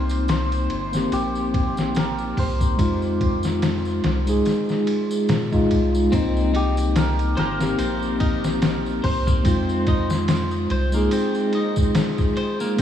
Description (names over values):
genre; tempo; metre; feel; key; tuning
trip hop; 72 BPM; 4/4; swing 56% on 16ths; C minor; A4 = 440 Hz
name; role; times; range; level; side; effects
santur; melody; 0.0-11.7 s; G4 to C5; -30 LUFS; right 1 dB; tape echo
mellow tine electric piano; accompaniment; 0.0-12.8 s; Ab3 to Ab4; -23 LUFS; equal; tremolo, vintage 12-bit sampler grit, tape echo
round analog bass; bass; 0.0-12.8 s; G1 to Bb2; -24 LUFS; left 1 dB; tube saturation
trip hop sampler-style drum kit; drums; 0.1-12.8 s; hi-hat, kick drum, ride cymbal, snare drum; -25 LUFS; left 1 dB; studio reverb
tambourine; percussion; 0.1-12.8 s; none; -42 LUFS; left 1 dB; none
twelve-string electric guitar; arpeggios; 6.1-12.8 s; Bb3 to C5; -29 LUFS; left 4 dB; analog delay
room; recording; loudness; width
light reverb; vinyl crackle, studio ambience; -19 LUFS; side -9 dB against mid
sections
0.0-6.1 A section; 6.1-12.8 B section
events
none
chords
0.0 Cm7; 2.8 Fm7; 6.1 Cm7; 9.5 Fm7